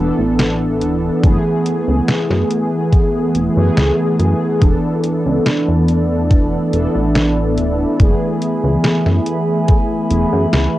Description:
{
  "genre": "vaporwave",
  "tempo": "71 BPM",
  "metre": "4/4",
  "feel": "straight",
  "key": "F# minor",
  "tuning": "A4 = 440 Hz",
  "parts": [
    { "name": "mellow synth brass", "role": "accompaniment", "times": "0.0-10.8 s", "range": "E3 to A4", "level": "-16 LUFS", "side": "equal", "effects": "analog chorus, analog delay" },
    { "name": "chorused synth bass", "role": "bass", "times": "0.0-10.7 s", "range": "D1 to F#2", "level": "-18 LUFS", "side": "equal", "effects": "none" },
    { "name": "detuned 8-bit digital drum machine", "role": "drums", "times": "0.4-10.7 s", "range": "hi-hat, snare drum", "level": "-19 LUFS", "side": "equal", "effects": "overdrive, cassette tape" },
    { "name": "electronic kick drum", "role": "drums", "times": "1.2-9.9 s", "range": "none", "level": "-13 LUFS", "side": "equal", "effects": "cassette tape" },
    { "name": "warbly tape-like pad", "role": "sustained chords", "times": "5.2-10.8 s", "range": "A3 to B5", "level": "-24 LUFS", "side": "equal", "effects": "chorus, built-in reverb" }
  ],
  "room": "light reverb",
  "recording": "home recording on cassette",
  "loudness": "-13 LUFS",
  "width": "side -15 dB against mid",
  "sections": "0.0-10.8 A section",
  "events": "none",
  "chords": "0.0 E7sus4; 1.2 F#m11; 4.6 E7sus4; 8.0 F#m11",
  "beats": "0.39 | 1.24 2.08 2.93 3.77 | 4.62 5.46 6.31 7.15 | 8.00 8.84 9.69 10.53"
}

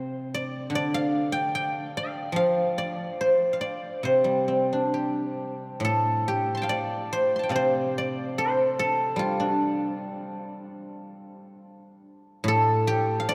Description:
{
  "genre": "chinese traditional, Chinese solo plucked strings",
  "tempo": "66-76 BPM",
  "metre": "4/4",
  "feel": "rubato",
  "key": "C zhi mode",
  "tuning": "A4 = 441 Hz",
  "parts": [
    { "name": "guzheng", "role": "solo", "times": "0.0-13.3 s", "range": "A2 to C6", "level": "-26 LUFS", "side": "equal", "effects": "none" }
  ],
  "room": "wet cathedral reverb, RT60 5.4 s",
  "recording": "in a vast, echoing space",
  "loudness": "-26 LUFS",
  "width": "mono",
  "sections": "0.0-5.8 A section; 5.8-13.3 B section",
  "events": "none",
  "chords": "none",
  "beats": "0.71 1.51 | 2.33 3.17 4.03 4.92 | 5.81 6.68 7.53 8.37 | 9.20 10.03 10.85 11.65 | 12.46 13.26"
}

